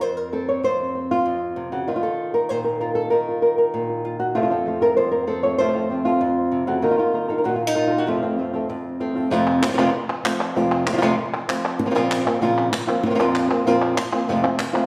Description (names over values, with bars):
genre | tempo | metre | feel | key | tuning
flamenco | 193 BPM | 4/4 | straight | unclear | A4 = 439 Hz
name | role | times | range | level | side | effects
flamenco guitar | melody | 0.0-14.9 s | F2 to Db5 | -22 LUFS | equal | none
flamenco guitar | stabs | 4.3-9.3 s | F2 to Bb4 | -27 LUFS | equal | none
palmas hand claps | percussion | 9.5-14.9 s | none | -28 LUFS | equal | none
room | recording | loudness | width
wet recital hall reverb, RT60 1.5 s | recorded in a church or concert hall | -21 LUFS | mono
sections
0.0-9.3 A section; 9.3-14.3 B section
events
none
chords
0.0 F5; 1.9 Ebsus2; 4.3 F; 6.8 Ebsus2; 8.1 F; 11.8 Bbmadd9; 13.0 Fsus4; 14.3 F